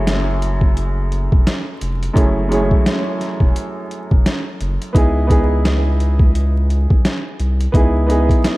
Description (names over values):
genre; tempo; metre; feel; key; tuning
hip hop, boom-bap hip-hop; 86 BPM; 4/4; swing 61% on 16ths; F# dorian; A4 = 438 Hz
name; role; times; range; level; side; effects
warm upright piano; accompaniment; 0.0-8.6 s; F#2 to G#4; -21 LUFS; right 1 dB; high-pass filter, low-pass filter, tape echo
saturated sub bass; bass; 0.0-8.3 s; E1 to C#2; -18 LUFS; equal; none
boom bap sampler-style drum kit; drums; 0.1-8.6 s; hi-hat, kick drum, snare drum; -15 LUFS; equal; none
room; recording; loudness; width
little or no reverb; echo-heavy mix, vinyl crackle; -14 LUFS; side -20 dB against mid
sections
0.0-8.6 A section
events
none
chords
0.0 F#m9; 5.0 C#m9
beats
0.07 0.76 1.46 | 2.16 2.86 3.56 4.25 | 4.95 5.65 6.34 7.04 | 7.74 8.44